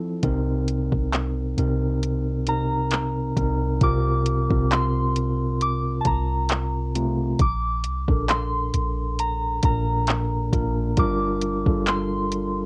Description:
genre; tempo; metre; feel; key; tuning
contemporary R&B; 67 BPM; 4/4; swing 54% on 16ths; unclear; A4 = 436 Hz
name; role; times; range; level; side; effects
mellow tine electric piano; accompaniment; 0.0-12.7 s; Bb2 to Bb4; -27 LUFS; equal; cassette tape
clean 808-style bass; bass; 0.2-12.7 s; G1 to C2; -30 LUFS; equal; none
smooth R&B drum kit; drums; 0.2-12.5 s; handclaps, hi-hat, kick drum; -26 LUFS; equal; cassette tape
soft synth bell; melody; 2.5-12.7 s; A5 to D6; -30 LUFS; equal; chorus, cassette tape
room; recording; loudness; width
little or no reverb; home recording on cassette; -23 LUFS; mono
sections
0.0-3.8 A section; 3.8-12.7 B section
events
none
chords
0.2 Cm7; 3.8 C7sus4; 7.4 Bbmaj7; 11.0 Gm7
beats
| 0.23 1.12 2.02 2.92 | 3.81 4.71 5.60 6.50 | 7.39 8.29 9.18 10.08 | 10.97 11.87

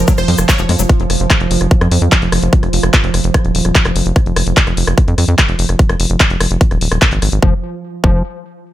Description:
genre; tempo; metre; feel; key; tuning
psychedelic trance; 147 BPM; 4/4; straight; unclear; A4 = 440 Hz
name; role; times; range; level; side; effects
pulsing gated texture; sustained chords; 0.0-7.5 s; F3; -20 LUFS; right 3 dB; chorus, built-in reverb, vintage 12-bit sampler grit, sidechain pumping
tight sequencer bass; bass; 0.0-8.2 s; Eb1 to F2; -15 LUFS; equal; tube saturation
overdriven acid bass; riff; 0.1-0.8, 7.4-8.2 s; F3 to Ab3; -22 LUFS; moving between left 9 dB and equal; auto-pan, sidechain pumping, ping-pong delay
big-room dance drum kit; drums; 0.1-7.4 s; handclaps, hi-hat, rim click; -17 LUFS; left 1 dB; none
electronic kick drum; drums; 0.1-8.1 s; none; -13 LUFS; equal; none
cabasa; percussion; 0.1-0.9 s; none; -23 LUFS; left 6 dB; none
supersaw stab; melody; 0.2-0.6 s; C5 to Db5; -23 LUFS; left 2 dB; phaser, sidechain pumping, digital delay
room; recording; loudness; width
digital ambience; none; -11 LUFS; side -14 dB against mid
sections
0.0-7.4 A section; 7.4-8.7 B section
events
filter sweep on synth texture 0.0-7.4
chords
0.0 F5; 7.4 N.C.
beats
0.08 0.49 | 0.90 1.30 1.71 2.12 | 2.53 2.94 3.34 3.75 | 4.16 4.57 4.98 5.38 | 5.79 6.20 6.61 7.02 | 7.42 7.83

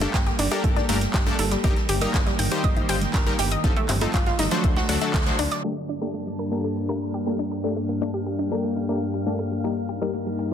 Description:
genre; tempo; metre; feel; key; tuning
progressive house; 120 BPM; 4/4; straight; G minor; A4 = 440 Hz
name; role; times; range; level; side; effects
airy breathy pad; sustained chords; 0.0-10.5 s; G2 to A5; -28 LUFS; equal; chorus, sidechain pumping
analog pluck; arpeggios; 0.0-10.5 s; F3 to G5; -30 LUFS; equal; chorus, sidechain pumping, ping-pong delay
supersaw stab; stabs; 0.0-10.5 s; F#3 to C5; -28 LUFS; left 3 dB; sidechain pumping, low-pass filter, ping-pong delay
plucky analog bass; bass; 0.0-5.5 s; G1 to D2; -28 LUFS; equal; sidechain pumping
pop drum kit; drums; 0.0-10.5 s; handclaps, hi-hat; -30 LUFS; right 1 dB; none
soft-mallet drum kit; drums; 0.0-5.6 s; ride cymbal, snare drum; -38 LUFS; right 2 dB; none
bongos and congas; percussion; 0.0-5.5 s; none; -35 LUFS; left 4 dB; sidechain pumping on perc
electronic kick drum; drums; 0.1-5.2 s; none; -23 LUFS; equal; none
backwards swelling texture; texture; 8.0-10.5 s; F5 to F6; -43 LUFS; equal; built-in reverb, sidechain pumping
room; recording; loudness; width
light reverb, digital ambience; dense, heavily limited modern master, low-pass filter; -21 LUFS; side -9 dB against mid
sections
0.0-5.6 A section; 5.6-10.5 B section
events
band accent 5.1; filter sweep on synth arpeggio sound 5.6-10.5; filter sweep on analog synth pad 5.6-10.5; filter sweep 5.6-10.5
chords
0.0 Gmadd9; 1.6 Eb/G; 3.6 F7/G; 4.6 D; 5.6 Gmadd9; 9.6 Eb/G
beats
0.14 0.64 1.14 | 1.64 2.14 2.64 3.14 | 3.64 4.14 4.64 5.14 | 5.64 6.14 6.64 7.14 | 7.64 8.14 8.64 9.14 | 9.64 10.14

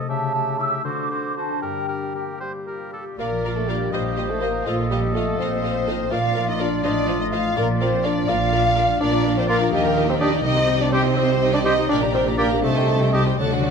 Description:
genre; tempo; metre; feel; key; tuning
classical; 76-84 BPM (dotted quarters); 6/8; straight; G minor, Bb major from 3.2 s; A4 = 439 Hz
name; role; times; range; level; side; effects
clear clarinet; second line; 0.0-13.2 s; F4 to C5; -32 LUFS; left 1 dB; none
warm oboe; second line; 0.0-13.2 s; A4 to E5; -32 LUFS; right 2 dB; none
concert harp; arpeggios; 0.0-13.7 s; G2 to G5; -27 LUFS; left 10 dB; none
mellow hollow large flute ensemble; second line; 0.1-13.7 s; F4 to E6; -29 LUFS; right 1 dB; none
mellow bassoon; accompaniment; 0.1-13.7 s; C#3 to F4; -24 LUFS; right 2 dB; none
warm symphonic violin section; melody; 3.2-13.7 s; F4 to F5; -29 LUFS; left 4 dB; none
warm symphonic violin section; second line; 3.2-13.7 s; G4 to Bb5; -31 LUFS; equal; none
warm symphonic viola section; accompaniment; 3.2-13.7 s; D4 to D5; -30 LUFS; right 2 dB; none
mellow French horn section; sustained chords; 3.2-13.7 s; F4 to Eb5; -30 LUFS; left 4 dB; none
rich symphonic double bass section; bass; 3.2-13.7 s; A1 to Eb2; -28 LUFS; right 5 dB; none
warm symphonic cello section; bass; 3.2-13.7 s; A2 to Eb3; -27 LUFS; right 2 dB; none
timpani; percussion; 13.4-13.7 s; D3; -28 LUFS; left 1 dB; none
room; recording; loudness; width
moderate scoring stage reverb, RT60 2.1 s; close, detailed microphones; -18 LUFS; side -6 dB against mid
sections
0.0-3.2 A section; 3.2-13.7 B section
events
timpani fill 13.4-13.7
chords
0.1 A7/C#; 0.8 D7; 1.6 Gm; 3.2 Bb; 3.9 Cm7/Bb; 4.7 F7/Bb; 6.1 Bb; 6.8 F7/A; 7.6 Bb; 9.7 Eb; 10.4 Cm; 11.9 Gm/Bb; 12.6 Am7b5/C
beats
| 0.09 0.84 | 1.62 2.41 | 3.18 3.92 | 4.65 5.38 | 6.11 6.84 | 7.57 8.28 | 9.00 9.73 | 10.45 11.17 | 11.90 12.63 | 13.39

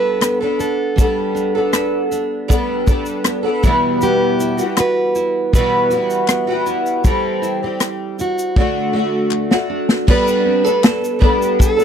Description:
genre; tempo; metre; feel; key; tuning
acoustic pop; 79 BPM; 4/4; straight; G major; A4 = 436 Hz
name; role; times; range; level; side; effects
fingerpicked plugged-in steel-string acoustic guitar; melody; 0.0-11.8 s; F#4 to B4; -20 LUFS; right 2 dB; none
fingerpicked twelve-string acoustic guitar; accompaniment; 0.0-11.8 s; E2 to A4; -18 LUFS; left 1 dB; double-tracked left and right
nylon-string guitar; arpeggios; 0.0-11.8 s; G3 to A4; -26 LUFS; right 9 dB; none
natural country drum kit; drums; 0.2-11.8 s; crash cymbal, kick drum, rim click, shaker, snare drum; -15 LUFS; equal; none
group handclap; percussion; 0.2-11.0 s; none; -25 LUFS; left 15 dB; none
room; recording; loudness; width
little or no reverb; dry, close 1970s-style studio recording; -14 LUFS; side -8 dB against mid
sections
0.0-10.1 A section; 10.1-11.8 B section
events
drum fill 8.6-10.1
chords
0.0 Gadd9; 3.6 Emadd9; 7.0 C/E; 8.6 D; 10.1 Gadd9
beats
0.22 | 0.98 1.74 2.50 3.26 | 4.01 4.77 5.53 6.29 | 7.05 7.80 8.56 9.32 | 10.08 10.83 11.59

